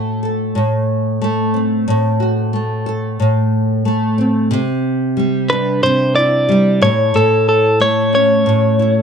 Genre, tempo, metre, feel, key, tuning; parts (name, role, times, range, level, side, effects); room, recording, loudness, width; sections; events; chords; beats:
pop; 91 BPM; 4/4; straight; A4 = 440 Hz
nylon-string guitar; accompaniment; 0.0-9.0 s; A2 to A4; -15 LUFS; equal; double-tracked left and right
direct-recorded clean electric guitar; melody; 5.5-9.0 s; A4 to D5; -14 LUFS; equal
moderate studio reverb, RT60 0.5 s; dark, warm production; -13 LUFS; side -7 dB against mid
0.0-4.5 A section; 4.5-9.0 B section
0.0 Am6; 4.5 Cadd9; 6.8 A
0.56 1.22 | 1.88 2.54 3.19 3.85 | 4.51 5.17 5.83 6.49 | 7.14 7.80 8.46